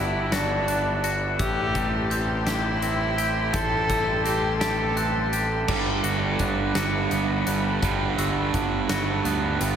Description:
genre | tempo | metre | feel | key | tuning
post-rock | 56 BPM (dotted quarters) | 6/8 | straight | unclear | A4 = 440 Hz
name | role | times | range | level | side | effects
rich cello | melody | 0.0-5.4 s | D4 to A4 | -28 LUFS | equal | tape echo
dark studio string section | sustained chords | 0.0-9.8 s | A4 to C6 | -36 LUFS | left 3 dB | none
glockenspiel with soft plastic mallets | arpeggios | 0.0-9.8 s | D6 to G6 | -35 LUFS | right 1 dB | tape echo
twangy electric guitar | arpeggios | 0.0-9.8 s | A2 to G4 | -30 LUFS | left 3 dB | spring reverb, tape echo
fuzz picked electric bass | bass | 0.0-9.8 s | G1 to D2 | -28 LUFS | equal | overdrive
huge arena drum kit | drums | 0.3-9.8 s | crash cymbal, hi-hat, kick drum, snare drum | -30 LUFS | left 1 dB | none
fuzz guitar | riff | 5.7-9.8 s | G2 to G3 | -26 LUFS | right 8 dB | distortion
room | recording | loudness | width
wet huge ambient reverb, RT60 7.9 s | dreamy mix soaked in reverb | -22 LUFS | side -8 dB against mid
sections
0.0-5.7 A section; 5.7-9.8 B section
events
none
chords
0.0 Gmaj7; 1.4 Am7; 5.7 Gmaj7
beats
0.33 | 1.40 2.47 | 3.54 4.61 | 5.68 6.75 | 7.83 8.89

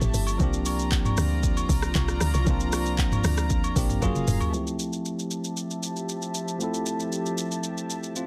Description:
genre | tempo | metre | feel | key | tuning
amapiano | 116 BPM | 4/4 | straight | F major | A4 = 440 Hz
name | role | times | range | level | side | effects
bell-like tine electric piano | accompaniment | 0.0-8.3 s | F3 to A4 | -32 LUFS | equal | low-pass filter
warm studio string section | sustained chords | 0.0-8.3 s | F3 to Bb5 | -37 LUFS | equal | sidechain pumping, low-pass filter
tight log drum bass | bass | 0.0-4.4 s | F1 to D2 | -28 LUFS | equal | none
afro-pop drum kit | drums | 0.0-8.3 s | handclaps, hi-hat, kick drum, rim click, shaker, toms | -30 LUFS | equal | none
agogo bells and woodblock | percussion | 0.3-4.5 s | none | -40 LUFS | equal | none
room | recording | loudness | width
little or no reverb | dense, heavily limited modern master | -26 LUFS | mono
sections
0.0-4.5 A section; 4.5-8.3 B section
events
drop 0.0-4.5; drum fill 4.0-4.5; filter sweep 4.5-8.3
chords
0.4 C9sus4; 4.0 Gbmaj9; 4.5 Fmaj9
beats
| 0.40 0.92 1.43 1.95 | 2.47 2.98 3.50 4.02 | 4.54 5.05 5.57 6.09 | 6.61 7.12 7.64 8.16

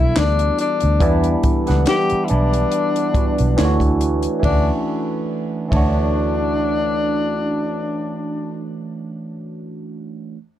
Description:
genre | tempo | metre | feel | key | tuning
R&B, neo-soul | 70 BPM | 4/4 | swing 55% on 16ths | D major | A4 = 440 Hz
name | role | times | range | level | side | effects
warm tenor saxophone | melody | 0.0-8.6 s | D4 to G4 | -22 LUFS | left 4 dB | tape echo
barky tine electric piano | accompaniment | 0.0-10.4 s | E3 to F#5 | -22 LUFS | right 2 dB | phaser
vintage muted fingered electric bass | bass | 0.0-9.3 s | B1 to E2 | -19 LUFS | equal | none
compact cocktail drum kit | drums | 0.2-6.0 s | handclaps, hi-hat, kick drum, ride cymbal, snare drum | -21 LUFS | equal | none
room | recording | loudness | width
light reverb | dark, warm production | -16 LUFS | side -12 dB against mid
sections
0.0-4.4 A section; 4.4-7.9 B section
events
none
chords
0.0 Em9; 3.6 Dmaj9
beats
0.15 | 1.00 1.86 2.72 3.58 | 4.43 5.29 6.15 7.00

